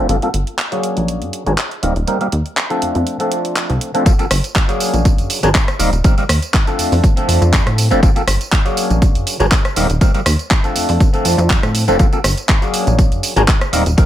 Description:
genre	filtered disco house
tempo	121 BPM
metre	4/4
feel	swing 54% on 16ths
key	G minor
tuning	A4 = 440 Hz
part	overdriven clav	accompaniment	0.0-14.1 s	F3 to Bb4	-18 LUFS	equal	phaser, sidechain pumping, low-pass filter
part	plucky analog bass	bass	0.0-14.0 s	Eb1 to A2	-17 LUFS	equal	sidechain pumping, low-pass filter
part	house drum kit	drums	0.1-14.1 s	handclaps, hi-hat, rim click, tambourine	-20 LUFS	right 1 dB	sidechain pumping on hats, sidechain pumping on perc
part	electronic kick drum	drums	4.1-14.1 s	none	-13 LUFS	equal	none
room	digital ambience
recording	none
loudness	-13 LUFS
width	side -12 dB against mid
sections	0.0-4.1 A section; 4.1-14.1 B section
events	filter sweep 0.0-4.1; drop 4.1-14.1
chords	0.1 Gm; 0.8 Bb7alt; 1.8 Eb6; 2.8 Dm7/F; 4.1 Gm; 4.8 Bb7alt; 5.8 Eb6; 6.8 Dm7/F; 8.0 Gm; 8.8 Bb7alt; 9.8 Eb6; 10.8 Dm7/F; 12.0 Gm; 12.7 Bb7alt

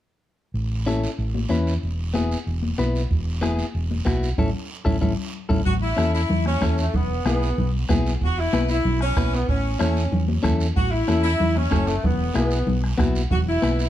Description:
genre	latin, cumbia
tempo	188 BPM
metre	4/4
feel	straight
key	A major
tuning	A4 = 441 Hz
part	fingered electric bass	bass	0.5-13.9 s	E1 to E2	-23 LUFS	equal	none
part	guiro	percussion	0.6-13.9 s	none	-38 LUFS	right 6 dB	none
part	clean electric guitar	accompaniment	0.9-13.9 s	B3 to B4	-27 LUFS	left 2 dB	none
part	congas	percussion	0.9-13.8 s	none	-28 LUFS	left 4 dB	none
part	bombo	percussion	3.1-13.8 s	none	-25 LUFS	right 2 dB	none
part	clear saxophone section	melody	5.7-13.9 s	A3 to F#4	-25 LUFS	equal	plate reverb
room	light reverb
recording	dark, warm production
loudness	-20 LUFS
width	side -12 dB against mid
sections	0.6-5.7 A section; 5.7-13.9 B section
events	band accent 4.4-5.7; drum fill 4.9-5.7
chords	0.6 A; 1.8 E; 4.4 A; 6.9 E; 9.5 A; 12.0 E5

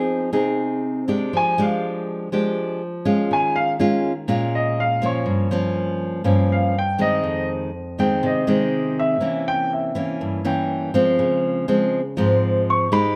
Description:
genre	bossa nova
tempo	122 BPM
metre	4/4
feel	straight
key	F minor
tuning	A4 = 439 Hz
part	nylon-string guitar	accompaniment	0.0-13.2 s	F2 to Ab4	-22 LUFS	equal	none
part	warm grand piano	melody	1.4-13.2 s	Db5 to Db6	-25 LUFS	equal	plate reverb
room	moderate large studio reverb, RT60 0.9 s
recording	none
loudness	-21 LUFS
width	mono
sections	0.0-13.2 A section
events	grand piano solo 0.0-13.2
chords	0.0 Fm7; 1.3 Fm69; 3.3 Eb9sus4; 5.3 Gm7b5; 7.2 Fm7; 9.2 C7b9; 11.2 Dbmaj7

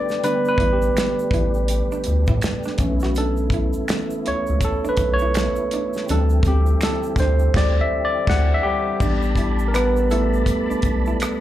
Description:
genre	R&B, neo-soul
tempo	82 BPM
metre	4/4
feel	swing 60% on 16ths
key	A minor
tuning	A4 = 441 Hz
part	vintage hollow-body jazz guitar	second line	0.0-11.2 s	C4 to F#4	-31 LUFS	right 3 dB	slapback echo
part	barky tine electric piano	accompaniment	0.0-11.4 s	D3 to F#5	-21 LUFS	equal	slapback echo
part	tonewheel organ	sustained chords	0.0-11.4 s	D3 to B5	-32 LUFS	right 2 dB	slow rotary speaker, chorus vibrato
part	damped 70s drum kit	drums	0.1-11.4 s	crash cymbal, hi-hat, kick drum, rim click, snare drum	-23 LUFS	equal	none
part	egg shaker and finger snaps	percussion	0.1-11.4 s	none	-35 LUFS	right 1 dB	slapback echo
part	round analog bass	bass	0.6-11.2 s	A1 to A2	-20 LUFS	equal	none
room	light reverb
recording	live gig heard through the venue's PA, club reverb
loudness	-18 LUFS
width	side -13 dB against mid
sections	0.0-9.0 A section; 9.0-11.4 B section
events	tine electric piano solo 0.0-9.0, 9.0-11.4; band accent 7.5-9.0; drums muted 8.3-9.0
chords	0.0 A9sus4; 2.8 B9sus4; 6.1 D9sus4; 9.0 A9sus4

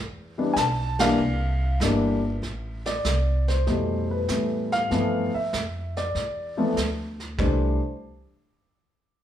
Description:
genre	jazz piano trio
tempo	97 BPM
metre	4/4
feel	swing 69% on 8ths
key	C major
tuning	A4 = 441 Hz
part	upright bass	bass	0.0-7.8 s	G1 to A2	-27 LUFS	right 1 dB	none
part	dark grand piano	melody	0.4-7.8 s	B2 to A5	-24 LUFS	left 2 dB	none
part	vintage brush drum kit	drums	0.6-7.9 s	brushed snare drum, hi-hat, kick drum, ride cymbal, snare drum, toms	-31 LUFS	right 3 dB	none
room	wet large studio reverb, RT60 0.9 s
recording	band playing live in one room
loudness	-22 LUFS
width	side -10 dB against mid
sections	0.0-2.4 A section; 2.4-7.4 B section; 7.4-9.2 C section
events	band accent 0.9-1.2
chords	0.0 Cmaj9 (rootless); 1.2 C7; 2.4 Fmaj9#11; 4.9 G13; 7.4 C69

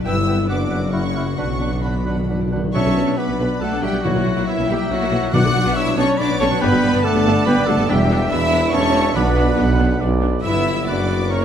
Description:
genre	classical, dramatic, fast romantic movement for symphony orchestra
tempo	140 BPM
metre	3/4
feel	rubato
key	B minor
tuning	A4 = 441 Hz
part	clear symphonic violin section	second line	0.0-11.4 s	E4 to F#5	-28 LUFS	left 2 dB	none
part	clear symphonic viola section	accompaniment	0.0-11.4 s	D3 to G4	-27 LUFS	equal	none
part	concert harp	arpeggios	0.0-11.4 s	E2 to B5	-26 LUFS	left 8 dB	none
part	clear symphonic cello section	bass	0.0-11.4 s	F#2 to F#4	-24 LUFS	right 1 dB	none
part	rich symphonic double bass section	bass	0.0-11.4 s	E1 to B1	-24 LUFS	right 2 dB	none
part	rich symphonic violin section	melody	0.1-11.4 s	E5 to F#6	-28 LUFS	right 1 dB	none
part	clear clarinet	second line	0.1-11.4 s	E4 to F#5	-28 LUFS	left 1 dB	none
part	concert flute	second line	0.1-11.4 s	C#5 to E6	-28 LUFS	left 2 dB	none
part	warm cor anglais	second line	0.1-11.4 s	A#4 to G5	-28 LUFS	right 3 dB	none
part	mellow bassoon	accompaniment	0.1-2.6 s	B3 to E4	-31 LUFS	right 3 dB	none
part	dark French horn section	sustained chords	0.1-11.4 s	A#3 to F#4	-26 LUFS	left 3 dB	none
part	clear tuba	bass	0.1-11.4 s	E1 to B1	-27 LUFS	right 4 dB	none
part	timpani	percussion	1.4-5.9, 9.2-9.8 s	B2	-25 LUFS	equal	none
room	moderate scoring stage reverb, RT60 1.8 s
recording	none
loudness	-16 LUFS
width	side -9 dB against mid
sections	0.0-2.7 A section; 2.7-11.4 B section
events	timpani fill 1.4-2.7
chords	0.1 Em/G; 0.5 Bm/F#; 0.9 F#7; 1.4 Bm; 4.0 F#7/B; 5.3 Bm; 6.6 Gmaj7; 7.9 Em7; 9.2 Bm; 10.4 Em/G; 10.9 Bm/F#

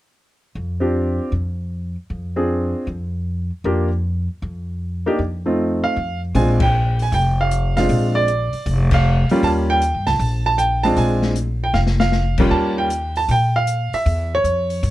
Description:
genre	jazz piano trio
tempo	156 BPM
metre	4/4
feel	swing 66% on 8ths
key	Bb major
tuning	A4 = 440 Hz
part	upright bass	bass	0.6-14.9 s	F1 to Bb2	-20 LUFS	equal	none
part	warm grand piano	melody	0.8-14.9 s	G3 to A5	-19 LUFS	right 1 dB	none
part	open jazz drum kit	drums	6.3-14.9 s	crash cymbal, hi-hat, kick drum, snare drum	-25 LUFS	left 2 dB	none
room	little or no reverb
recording	none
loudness	-17 LUFS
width	side -15 dB against mid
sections	0.2-6.3 A section; 6.3-14.9 B section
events	band accent 6.5, 8.9; drum fill 11.7-12.1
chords	0.2 Fsus2; 6.3 Bb7; 9.4 Eb7; 11.0 Bb7; 12.5 Eb7; 14.1 E5

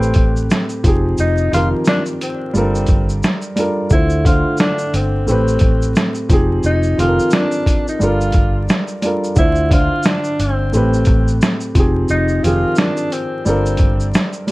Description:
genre	lo-fi hip hop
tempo	88 BPM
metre	4/4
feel	swing 61% on 16ths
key	unclear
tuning	A4 = 441 Hz
part	mellow tenor saxophone	melody	0.0-14.1 s	C4 to F4	-21 LUFS	equal	low-pass filter, plate reverb
part	dark upright piano	accompaniment	0.0-14.5 s	A2 to E5	-19 LUFS	equal	cassette tape, low-pass filter, plate reverb
part	vintage muted fingered electric bass	bass	0.0-14.1 s	F1 to D2	-18 LUFS	equal	none
part	boom bap sampler-style drum kit	drums	0.0-14.5 s	hi-hat, kick drum, shaker, snare drum	-16 LUFS	equal	none
room	light reverb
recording	vinyl crackle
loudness	-13 LUFS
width	side -20 dB against mid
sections	0.0-14.5 A section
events	none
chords	0.0 Am7; 0.8 Fm7; 2.5 Gm7; 3.9 Dm7; 5.3 Am7; 6.3 Fm7; 8.0 Gm7; 9.4 Dm7; 10.7 Am7; 11.8 Fm7; 13.5 Gm7

